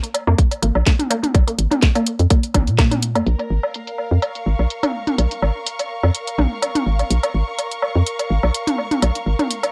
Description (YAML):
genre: minimal techno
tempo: 125 BPM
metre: 4/4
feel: swing 54% on 16ths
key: Bb minor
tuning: A4 = 440 Hz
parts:
  - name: garage drum kit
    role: drums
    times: 0.0-9.7 s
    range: hi-hat, snare drum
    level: -26 LUFS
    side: equal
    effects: low-pass filter on snare, low-pass filter on hats, low-pass filter on room
  - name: electronic woodblock and toms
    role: percussion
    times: 0.1-9.7 s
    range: none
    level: -24 LUFS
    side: equal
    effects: tape echo
  - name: resonant blip pluck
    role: riff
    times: 0.3-3.2 s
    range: Bb3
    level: -27 LUFS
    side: equal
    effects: phaser, sidechain pumping, tape echo
  - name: hollow knocking FM bass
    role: bass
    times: 0.3-9.4 s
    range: Ab1 to Bb2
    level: -19 LUFS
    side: equal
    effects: sidechain pumping
  - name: electronic kick drum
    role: drums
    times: 0.4-2.9 s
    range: none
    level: -18 LUFS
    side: equal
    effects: none
  - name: rich studio string section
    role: texture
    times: 3.3-9.7 s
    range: Bb4 to Db6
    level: -30 LUFS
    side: equal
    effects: sidechain pumping
room: light reverb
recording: dry, gritty hardware recording, transformer saturation, cassette tape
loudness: -19 LUFS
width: mono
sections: 0.0-3.3 A section; 3.3-9.7 B section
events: band accent 2.8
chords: 0.0 Bb5